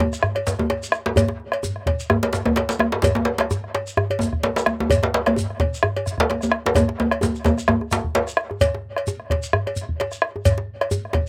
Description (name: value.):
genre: west african traditional, West African drum ensemble.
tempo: 129 BPM.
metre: 4/4.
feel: swing 55% on 16ths.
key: none.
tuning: none.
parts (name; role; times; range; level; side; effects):
djembe; percussion; 0.0-11.3 s; none; -28 LUFS; equal; none.
djembe; percussion; 0.0-8.3 s; none; -24 LUFS; equal; none.
bombo; percussion; 0.1-11.3 s; none; -25 LUFS; equal; none.
shekere; percussion; 0.1-11.0 s; none; -31 LUFS; equal; none.
cowbell; percussion; 0.4-11.3 s; none; -27 LUFS; equal; none.
room: little or no reverb.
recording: recorded outdoors, with no room sound.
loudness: -22 LUFS.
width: mono.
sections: 0.0-8.6 A section; 8.6-11.3 B section.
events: drum fill 6.8-8.6.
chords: none.